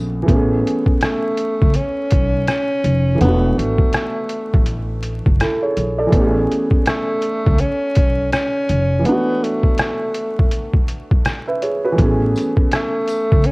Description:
lo-fi hip hop; 82 BPM; 4/4; swing 60% on 16ths; A major; A4 = 445 Hz
felt-muted upright piano; accompaniment; 0.0-13.5 s; E3 to E5; -21 LUFS; right 1 dB; low-pass filter
upright bass; bass; 0.0-13.4 s; E1 to C#2; -19 LUFS; equal
trip hop sampler-style drum kit; drums; 0.3-13.5 s; hi-hat, kick drum, rim click; -17 LUFS; equal
breathy tenor saxophone; melody; 1.0-13.5 s; A3 to C#4; -21 LUFS; equal; low-pass filter, plate reverb, analog delay
tambourine; percussion; 12.4-13.3 s; -40 LUFS; left 2 dB
light reverb; worn, warbling old tape, cassette tape, vinyl crackle, warbly pitch drift; -15 LUFS; side -26 dB against mid
0.3-13.5 A section
0.3 Amaj9; 3.2 E9sus4; 6.1 Amaj9; 9.1 E9sus4; 12.0 Amaj9
| 0.28 1.01 1.74 2.48 | 3.21 3.94 4.67 5.40 | 6.13 6.87 7.60 8.33 | 9.06 9.79 10.52 11.26 | 11.99 12.72 13.45

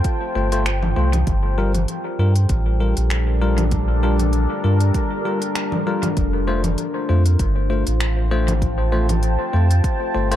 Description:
ambient dub; 98 BPM; 4/4; swing 55% on 16ths; G minor; A4 = 440 Hz
deep dark ambient pad; sustained chords; 0.0-10.4 s; G3 to A5; -25 LUFS; left 1 dB; chorus, built-in reverb
electronic kick drum; drums; 0.0-10.0 s; -22 LUFS; equal
organic electronic drum kit; drums; 0.0-10.4 s; congas, finger snaps, hi-hat; -28 LUFS; left 1 dB; dub echo
bell-like tine electric piano; stabs; 0.4-10.4 s; G3 to C5; -26 LUFS; left 4 dB; dub echo
warm sub bass; bass; 0.4-10.4 s; F1 to G2; -18 LUFS; equal
light reverb; -17 LUFS; side -12 dB against mid
0.0-10.4 A section
0.0 F; 1.3 Gm7; 6.2 F
0.05 0.66 | 1.27 1.89 2.50 3.11 | 3.72 4.33 4.95 5.56 | 6.17 6.78 7.39 8.01 | 8.62 9.23 9.84

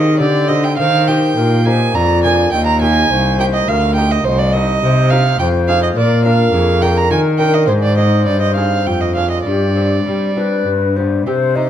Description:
classical, baroque-style sonata movement with continuo; 104 BPM; 3/4; rubato; A4 = 439 Hz
bright baroque flute; melody; 0.0-11.7 s; G4 to Eb5; -20 LUFS; left 9 dB
warm violin; second line; 0.0-11.7 s; G4 to Bb5; -17 LUFS; right 6 dB
lute; accompaniment; 0.0-11.7 s; D2 to Bb4; -19 LUFS; left 1 dB
rich cello; bass; 0.0-11.7 s; C2 to G3; -16 LUFS; equal
moderate recital hall reverb, RT60 1.4 s; -12 LUFS; side -10 dB against mid
0.0-11.3 A section
0.0 Cm; 0.8 Eb; 2.0 Bb7/F; 2.5 Eb; 4.3 Cm; 5.4 Fm7; 6.0 Bb; 7.1 Eb5; 7.7 Ab; 8.9 Dm7b5/F; 9.5 Gsus4
0.19 | 0.78 1.37 1.95 | 2.53 3.10 3.68 | 4.26 4.83 5.40 | 5.97 6.54 7.11 | 7.68 8.26 8.86 | 9.46 10.06 10.66 | 11.27

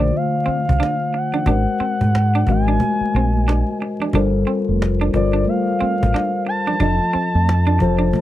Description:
R&B, neo-soul; 90 BPM; 4/4; swing 61% on 16ths; A4 = 444 Hz
gliding portamento lead; melody; 0.0-8.2 s; D5 to A5; -22 LUFS; right 1 dB; chorus, tape echo
electric guitar at the edge of break-up; second line; 0.0-8.1 s; C4 to D4; -24 LUFS; right 5 dB
mellow tine electric piano; accompaniment; 0.0-8.2 s; D3 to D#5; -21 LUFS; left 4 dB; lush chorus
deep dub fingered electric bass; bass; 0.0-8.1 s; F1 to G#2; -18 LUFS; equal
cajon; drums; 0.0-8.2 s; -24 LUFS; equal
congas; percussion; 0.1-8.2 s; -31 LUFS; right 6 dB
little or no reverb; dry, close 1970s-style studio recording, vinyl crackle; -16 LUFS; side -14 dB against mid
0.0-8.2 A section
0.0 Dm7; 1.5 G#9; 4.1 Gm11; 6.8 F7
0.13 0.80 | 1.47 2.13 2.80 3.46 | 4.13 4.80 5.46 6.13 | 6.80 7.46 8.13

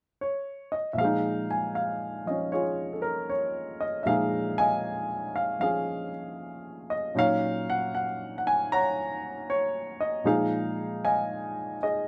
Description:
solo jazz; 78 BPM; 4/4; swing 66% on 8ths; A4 = 439 Hz
warm baby grand piano; solo; 0.2-12.1 s; Bb2 to Bb5; -29 LUFS; equal
light reverb; -29 LUFS; mono
1.0-12.1 A section
0.0 N.C.; 1.0 Bb7sus4; 7.1 Ebm7/Bb; 10.2 Bb7sus4
0.20 | 0.97 1.74 2.51 3.29 | 4.06 4.83 5.60 6.38 | 7.15 7.92 8.69 9.46 | 10.24 11.01 11.78

